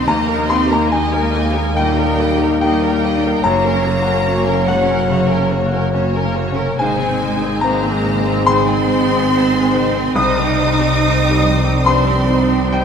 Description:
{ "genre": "cinematic", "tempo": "71 BPM", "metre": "4/4", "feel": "rubato", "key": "Ab major", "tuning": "A4 = 435 Hz", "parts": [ { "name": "rich studio violin section", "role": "melody", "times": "0.0-12.8 s", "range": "G4 to Eb5", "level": "-25 LUFS", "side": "left 2 dB", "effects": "none" }, { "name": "rich studio violin section", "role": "second line", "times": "0.0-12.8 s", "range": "Gb5 to Eb6", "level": "-24 LUFS", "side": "left 1 dB", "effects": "none" }, { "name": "bright baby grand piano", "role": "accompaniment", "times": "0.0-12.8 s", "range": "C2 to Eb6", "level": "-20 LUFS", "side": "left 2 dB", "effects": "none" }, { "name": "rich studio viola section", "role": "accompaniment", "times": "0.0-12.8 s", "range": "G3 to Bb4", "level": "-24 LUFS", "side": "equal", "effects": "none" }, { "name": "concert harp", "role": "arpeggios", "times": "0.0-12.8 s", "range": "Gb2 to Db5", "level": "-24 LUFS", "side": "left 7 dB", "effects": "none" }, { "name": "rich studio cello section", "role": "bass", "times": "0.0-12.8 s", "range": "Gb3 to Eb4", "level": "-21 LUFS", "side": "right 4 dB", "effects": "none" }, { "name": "rich studio double bass section", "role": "bass", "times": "0.0-12.8 s", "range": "Gb1 to Eb2", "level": "-21 LUFS", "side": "right 3 dB", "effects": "none" }, { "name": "warm French horn section", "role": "sustained chords", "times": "0.1-12.8 s", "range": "Gb3 to Db5", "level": "-21 LUFS", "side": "left 2 dB", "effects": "none" } ], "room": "moderate scoring stage reverb, RT60 1.7 s", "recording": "minimal, uncompressed stereo recording", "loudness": "-13 LUFS", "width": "side -7 dB against mid", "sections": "0.0-12.8 A section", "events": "none", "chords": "0.1 Eb; 3.4 Gb; 6.8 Ab; 10.2 Cm" }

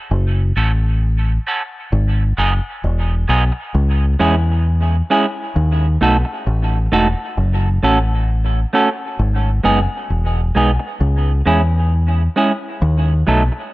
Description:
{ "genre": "dub reggae", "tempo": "66 BPM", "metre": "4/4", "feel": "straight", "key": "C# minor", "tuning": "A4 = 439 Hz", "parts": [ { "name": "deep dub fingered electric bass", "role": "bass", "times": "0.1-13.5 s", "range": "E1 to E2", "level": "-15 LUFS", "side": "equal", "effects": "none" }, { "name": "semi-hollow electric guitar", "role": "accompaniment", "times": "0.6-13.6 s", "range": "F#3 to A4", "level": "-19 LUFS", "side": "right 2 dB", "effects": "high-pass filter, dub echo" } ], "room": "light reverb", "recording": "echo-heavy mix, nothing above 7.7 kHz", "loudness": "-14 LUFS", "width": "side -18 dB against mid", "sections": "0.0-13.7 A section", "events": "none", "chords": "0.1 F#m; 1.9 G#m; 3.7 C#m; 5.6 D#dim; 7.4 F#m; 9.2 G#m; 11.0 C#m; 12.8 D#dim" }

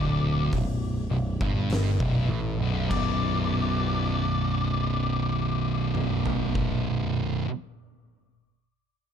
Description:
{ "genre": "stoner and doom metal", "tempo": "49 BPM", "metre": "4/4", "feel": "straight", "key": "B minor", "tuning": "A4 = 440 Hz", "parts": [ { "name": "octave-fuzz lead guitar", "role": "melody", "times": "0.0-7.4 s", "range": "D5", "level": "-34 LUFS", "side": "left 5 dB", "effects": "distortion, tape echo" }, { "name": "thick fuzz guitar", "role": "riff", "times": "0.0-7.5 s", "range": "B1 to B2", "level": "-30 LUFS", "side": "left 9 dB", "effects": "distortion" }, { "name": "thick fuzz guitar", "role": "riff", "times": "0.0-7.5 s", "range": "B1 to B2", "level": "-28 LUFS", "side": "right 8 dB", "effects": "distortion" }, { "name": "overdriven picked electric bass", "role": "bass", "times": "0.0-7.4 s", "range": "B0 to A1", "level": "-31 LUFS", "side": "equal", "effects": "tube saturation" }, { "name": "oversized low-tuned drum kit", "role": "drums", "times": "0.5-6.8 s", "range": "crash cymbal, hi-hat, kick drum, snare drum, toms", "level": "-31 LUFS", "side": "equal", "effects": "none" } ], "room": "light reverb", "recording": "dark, warm production", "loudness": "-24 LUFS", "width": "side -8 dB against mid", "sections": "0.0-2.9 A section; 2.9-7.8 B section", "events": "slowing down 0.0-2.9", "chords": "0.0 Bm" }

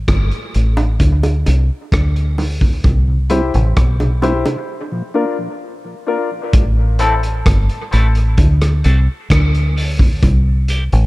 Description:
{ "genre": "dub reggae", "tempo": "65 BPM", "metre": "4/4", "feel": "straight", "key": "unclear", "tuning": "A4 = 440 Hz", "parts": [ { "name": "deep dub fingered electric bass", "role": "bass", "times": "0.0-11.1 s", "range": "G1 to D2", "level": "-14 LUFS", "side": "equal", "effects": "none" }, { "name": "crunchy breakbeat drum kit", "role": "drums", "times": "0.1-11.1 s", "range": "hi-hat, kick drum, rim click", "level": "-16 LUFS", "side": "equal", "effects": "none" }, { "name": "bongos", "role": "percussion", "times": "0.8-4.7 s", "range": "none", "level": "-24 LUFS", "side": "right 2 dB", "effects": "high-pass filter on perc, dub echo" }, { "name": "mellow tonewheel organ", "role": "accompaniment", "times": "3.1-6.4 s", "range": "Bb2 to F4", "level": "-23 LUFS", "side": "equal", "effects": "slow rotary speaker, high-pass filter" }, { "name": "warm concert grand piano", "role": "stabs", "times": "3.3-10.0 s", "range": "C4 to C5", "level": "-22 LUFS", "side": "left 4 dB", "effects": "high-pass filter, dub echo" }, { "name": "semi-hollow electric guitar", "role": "accompaniment", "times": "7.0-10.8 s", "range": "G3 to A4", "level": "-25 LUFS", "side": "right 1 dB", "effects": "high-pass filter, dub echo" } ], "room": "studio reverb", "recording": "dark, warm production", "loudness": "-13 LUFS", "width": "side -20 dB against mid", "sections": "0.0-6.5 A section; 6.5-11.1 B section", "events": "break 0.0-6.5; filter sweep 2.8-11.1; part muted 6.5-11.1", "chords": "0.0 Gsus2; 1.0 N.C.; 2.8 C; 4.7 Bb; 6.5 Am; 8.4 D; 10.2 C" }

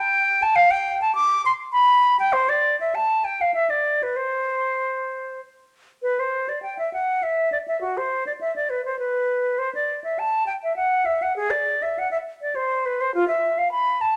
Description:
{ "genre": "classical, baroque-style fantasia for unaccompanied flute", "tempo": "101 BPM", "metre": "3/4", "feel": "rubato", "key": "C major", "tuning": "A4 = 440 Hz", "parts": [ { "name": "silver concert flute", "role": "solo", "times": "0.0-14.2 s", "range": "F4 to D6", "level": "-22 LUFS", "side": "equal", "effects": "none" } ], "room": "moderate large studio reverb, RT60 1.1 s", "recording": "none", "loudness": "-22 LUFS", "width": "mono", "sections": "0.0-6.0 A section; 6.0-14.2 A section", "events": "none", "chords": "none" }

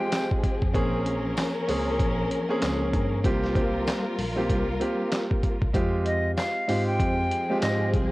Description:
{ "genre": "hip hop, boom-bap hip-hop", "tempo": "96 BPM", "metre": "4/4", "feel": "swing 60% on 16ths", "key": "F minor", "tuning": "A4 = 440 Hz", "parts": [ { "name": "silver concert flute", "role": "melody", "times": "0.0-0.3, 6.1-7.9 s", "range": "Eb5 to G5", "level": "-29 LUFS", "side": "equal", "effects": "cassette tape, tape echo" }, { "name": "warm grand piano", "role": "accompaniment", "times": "0.0-8.1 s", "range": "Ab3 to Ab4", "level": "-28 LUFS", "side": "right 1 dB", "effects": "cassette tape" }, { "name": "warm studio string section", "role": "stabs", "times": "0.0-8.1 s", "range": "F3 to Bb4", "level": "-31 LUFS", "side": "left 2 dB", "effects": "cassette tape, tape echo" }, { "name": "dusty soul sampler-style drum kit", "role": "drums", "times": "0.1-8.1 s", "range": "handclaps, hi-hat, kick drum, snare drum", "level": "-27 LUFS", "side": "equal", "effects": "cassette tape" }, { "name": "tambourine", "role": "percussion", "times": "0.1-7.8 s", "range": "none", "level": "-46 LUFS", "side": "left 3 dB", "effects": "none" }, { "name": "mellow tine electric piano", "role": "bass", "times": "0.6-8.1 s", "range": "Bb1 to Ab2", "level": "-30 LUFS", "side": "equal", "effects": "medium stereo tremolo" } ], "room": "light reverb", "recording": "home recording on cassette", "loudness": "-23 LUFS", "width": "side -19 dB against mid", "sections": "0.0-8.1 A section", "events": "none", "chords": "0.0 Fmadd9; 0.7 Bbm9; 3.2 C7sus4; 5.7 Fmadd9" }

